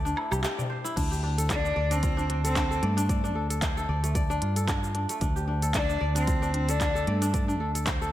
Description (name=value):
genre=organic downtempo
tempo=113 BPM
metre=4/4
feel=swing 56% on 16ths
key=D minor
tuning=A4 = 440 Hz
part: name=kora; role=arpeggios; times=0.0-8.1 s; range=A3 to D5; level=-31 LUFS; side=left 1 dB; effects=ping-pong delay
part: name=fretless electric bass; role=bass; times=0.0-8.1 s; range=C2 to G2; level=-28 LUFS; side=equal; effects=sidechain pumping
part: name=organic electronic drum kit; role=drums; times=0.1-8.1 s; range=crash cymbal, handclaps, hi-hat, shaker, woodblock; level=-34 LUFS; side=equal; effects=overdrive
part: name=darbuka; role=percussion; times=0.2-0.8 s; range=none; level=-37 LUFS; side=left 2 dB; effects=none
part: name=electronic kick drum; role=drums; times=1.0-8.0 s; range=none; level=-30 LUFS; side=equal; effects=overdrive
part: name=rich cello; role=melody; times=1.5-7.6 s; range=A3 to D4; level=-31 LUFS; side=left 1 dB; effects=ping-pong delay
room=light reverb, digital ambience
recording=none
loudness=-24 LUFS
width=side -13 dB against mid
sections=1.0-8.1 A section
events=none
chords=0.0 C/D; 1.0 Dm7